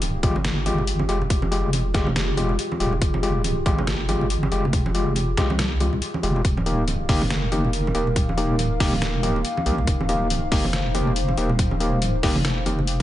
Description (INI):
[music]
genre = deep dubstep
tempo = 140 BPM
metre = 4/4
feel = swing 59% on 16ths, half-time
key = F minor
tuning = A4 = 440 Hz
[part]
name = dark analog pad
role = sustained chords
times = 0.1-13.0 s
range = Eb4 to F5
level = -31 LUFS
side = equal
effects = chorus
[part]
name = deep soft wobble bass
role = bass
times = 0.0-13.0 s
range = Eb1 to C2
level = -24 LUFS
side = equal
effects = chorus
[part]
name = trip hop sampler-style drum kit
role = drums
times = 0.0-13.0 s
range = hi-hat, snare drum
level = -28 LUFS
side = left 1 dB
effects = none
[part]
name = congas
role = percussion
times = 0.0-12.9 s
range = none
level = -30 LUFS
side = right 2 dB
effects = dub echo
[part]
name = overdriven tine electric piano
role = stabs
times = 0.2-12.8 s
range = Ab3 to G4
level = -26 LUFS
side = left 2 dB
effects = fast tremolo, dub echo
[part]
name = electronic kick drum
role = drums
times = 0.2-13.0 s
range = none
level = -22 LUFS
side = equal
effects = overdrive
[sound]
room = light reverb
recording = nothing above 10.6 kHz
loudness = -20 LUFS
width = side -13 dB against mid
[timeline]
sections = 0.0-13.0 A section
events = none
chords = 0.0 Fmadd9; 6.4 Eb